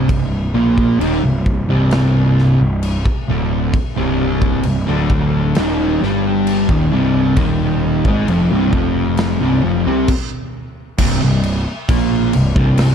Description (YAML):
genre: stoner and doom metal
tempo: 66 BPM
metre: 4/4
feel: straight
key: C minor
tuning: A4 = 440 Hz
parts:
  - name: fuzz guitar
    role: riff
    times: 0.0-12.9 s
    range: C2 to C4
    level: -15 LUFS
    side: equal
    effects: distortion
  - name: fuzz picked electric bass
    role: bass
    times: 0.0-12.9 s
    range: C1 to C2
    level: -20 LUFS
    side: equal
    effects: overdrive
  - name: big rock drum kit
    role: drums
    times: 0.1-12.9 s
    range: crash cymbal, kick drum, snare drum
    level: -21 LUFS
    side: equal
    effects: none
room: small room ambience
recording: dark, warm production, lossy compression artefacts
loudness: -13 LUFS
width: side -8 dB against mid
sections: 0.0-11.0 A section; 11.0-12.9 B section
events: stop 10.1-11.0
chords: 0.0 Cm; 11.0 N.C.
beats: | 0.10 1.01 1.92 2.83 | 3.75 4.66 5.57 6.47 | 7.38 8.29 9.19 10.09 | 10.99 11.89 12.79